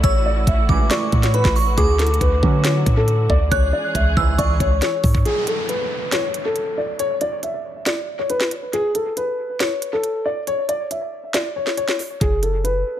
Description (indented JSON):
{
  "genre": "hip hop, trap",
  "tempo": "138 BPM",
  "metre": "4/4",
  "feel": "half-time",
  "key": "unclear",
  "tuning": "A4 = 441 Hz",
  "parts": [
    { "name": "dark concert grand piano", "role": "melody", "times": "0.0-13.0 s", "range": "G#4 to E5", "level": "-22 LUFS", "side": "left 2 dB", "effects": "analog delay" },
    { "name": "glassy synth bell", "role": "second line", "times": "0.0-5.2 s", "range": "B5 to F#6", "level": "-26 LUFS", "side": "right 5 dB", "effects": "chorus, phaser, analog delay" },
    { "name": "dark symphonic string section", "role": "sustained chords", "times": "0.0-5.2 s", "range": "D3 to G#4", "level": "-28 LUFS", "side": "equal", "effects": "none" },
    { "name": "warm 808-style bass", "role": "bass", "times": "0.0-5.2, 12.2-12.8 s", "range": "F#1 to D3", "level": "-19 LUFS", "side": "equal", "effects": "none" },
    { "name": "trap drum kit", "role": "drums", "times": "0.0-12.7 s", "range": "hi-hat, kick drum, snare drum", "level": "-21 LUFS", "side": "equal", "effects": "analog delay" },
    { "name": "dark brass ensemble", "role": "stabs", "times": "0.7-4.6 s", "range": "C#2 to C#4", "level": "-28 LUFS", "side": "right 8 dB", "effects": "analog delay" },
    { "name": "downlifter", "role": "sound effects", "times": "5.3-8.7 s", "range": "none", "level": "-31 LUFS", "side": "equal", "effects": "none" }
  ],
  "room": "small room reverb",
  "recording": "echo-heavy mix",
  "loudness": "-17 LUFS",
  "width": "side -11 dB against mid",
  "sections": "0.0-5.3 A section; 5.3-13.0 B section",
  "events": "drum fill 4.4-5.3; break 5.3-12.2",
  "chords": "0.0 A6; 1.8 Dmaj7; 3.5 C#m; 5.3 N.C.; 12.2 F#madd11"
}